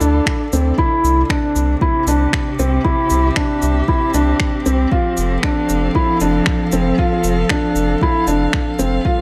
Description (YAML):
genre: piano and strings electronica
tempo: 116 BPM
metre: 4/4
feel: straight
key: unclear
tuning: A4 = 441 Hz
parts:
  - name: warm string quartet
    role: sustained chords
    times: 0.0-9.2 s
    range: C3 to F5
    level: -25 LUFS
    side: equal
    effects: sidechain pumping
  - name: felt-muted upright piano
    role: riff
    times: 0.0-9.2 s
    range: C4 to F4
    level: -20 LUFS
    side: equal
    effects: tape echo
  - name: warm sub bass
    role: bass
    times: 0.0-9.0 s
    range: F1 to D2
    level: -20 LUFS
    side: equal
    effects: sidechain pumping
  - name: electronic shaker and finger snaps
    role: drums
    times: 0.0-8.9 s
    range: none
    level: -25 LUFS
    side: equal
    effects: none
  - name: electronic kick drum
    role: drums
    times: 0.3-9.2 s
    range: none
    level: -22 LUFS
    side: equal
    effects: none
room: light reverb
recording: none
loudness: -16 LUFS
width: mono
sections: 0.0-9.2 A section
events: none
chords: 0.0 Dm; 0.8 C; 4.9 F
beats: 0.26 | 0.78 1.30 1.81 2.33 | 2.85 3.37 3.88 4.40 | 4.92 5.43 5.95 6.47 | 6.99 7.50 8.02 8.54 | 9.05